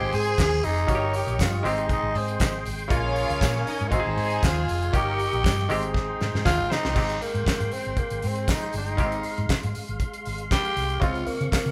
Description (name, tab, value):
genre	disco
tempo	118 BPM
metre	4/4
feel	straight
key	Ab major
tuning	A4 = 440 Hz
part	growling tenor saxophone	melody	0.0-11.7 s	Bb3 to Ab4	-30 LUFS	equal	none
part	clear studio string section	second line	0.0-4.7 s	Eb4 to Ab5	-35 LUFS	equal	none
part	muted clav	accompaniment	0.0-11.7 s	Db3 to C5	-34 LUFS	equal	none
part	tonewheel organ	sustained chords	0.0-11.7 s	Ab3 to Db6	-36 LUFS	equal	overdrive, chorus vibrato, slow rotary speaker
part	mellow horn section	stabs	0.0-6.7 s	C4 to Eb5	-34 LUFS	equal	none
part	hollow-body short-scale fingered electric bass	bass	0.0-11.7 s	F1 to Db3	-31 LUFS	equal	none
part	damped 70s drum kit	drums	0.1-11.7 s	crash cymbal, handclaps, hi-hat, kick drum, snare drum	-29 LUFS	equal	none
part	tambourine	percussion	0.1-11.7 s	none	-47 LUFS	equal	none
room	moderate large studio reverb, RT60 1.1 s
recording	band playing live in one room, faint mains hum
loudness	-25 LUFS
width	mono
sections	0.0-7.0 A section; 7.0-11.7 B section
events	drum fill 5.9-7.0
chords	0.0 Abmaj7; 0.9 Eb7/G; 1.6 Abmaj7; 2.9 Bbm7; 3.9 Ab; 4.9 Eb7/G; 5.7 Abmaj7; 11.0 Dbmaj7